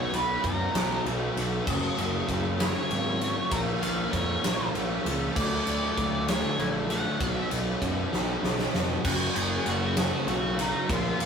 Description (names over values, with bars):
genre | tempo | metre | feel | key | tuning
quiet-loud alternative rock | 65 BPM (dotted quarters) | 6/8 | straight | F# major | A4 = 436 Hz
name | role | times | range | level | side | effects
octave-fuzz lead guitar | melody | 0.0-11.3 s | D#4 to G#5 | -32 LUFS | equal | distortion, tape echo
distorted electric guitar | riff | 0.0-11.3 s | F#2 to D4 | -34 LUFS | equal | distortion
thick fuzz guitar | riff | 0.0-11.3 s | F#2 to D#4 | -34 LUFS | left 4 dB | distortion
thick fuzz guitar | riff | 0.0-11.3 s | F#2 to D#4 | -38 LUFS | right 5 dB | none
fuzz picked electric bass | bass | 0.0-11.3 s | E#1 to F#2 | -31 LUFS | equal | overdrive
big rock drum kit | drums | 0.1-11.3 s | crash cymbal, kick drum, ride cymbal, snare drum | -29 LUFS | equal | none
room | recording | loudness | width
light reverb | rough rehearsal-room recording, warm saturation | -25 LUFS | side -6 dB against mid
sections
0.0-9.1 A section; 9.1-11.3 B section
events
lead electric guitar solo 0.0-9.1; drum fill 8.1-9.1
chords
0.0 B; 1.7 F#; 3.5 A#m; 5.4 D; 7.2 B; 9.1 F#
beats
0.74 | 1.67 2.59 | 3.51 4.44 | 5.36 6.28 | 7.20 8.13 | 9.05 9.97 | 10.90